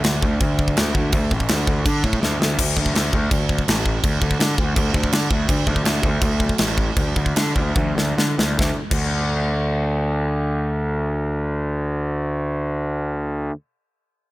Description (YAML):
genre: heavy metal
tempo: 139-165 BPM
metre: 4/4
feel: straight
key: unclear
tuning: A4 = 439 Hz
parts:
  - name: fuzz picked electric bass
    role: bass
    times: 0.0-13.5 s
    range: A1 to D3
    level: -21 LUFS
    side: equal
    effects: overdrive
  - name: tight metal drum kit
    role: drums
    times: 0.0-9.0 s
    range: crash cymbal, kick drum, snare drum, toms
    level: -21 LUFS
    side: equal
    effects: none
room: little or no reverb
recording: none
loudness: -18 LUFS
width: side -17 dB against mid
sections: 0.0-2.6 A section; 2.6-8.6 B section; 8.6-12.0 C section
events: drum fill 2.2-2.6, 7.8-8.6; slowing down 5.5-8.6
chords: none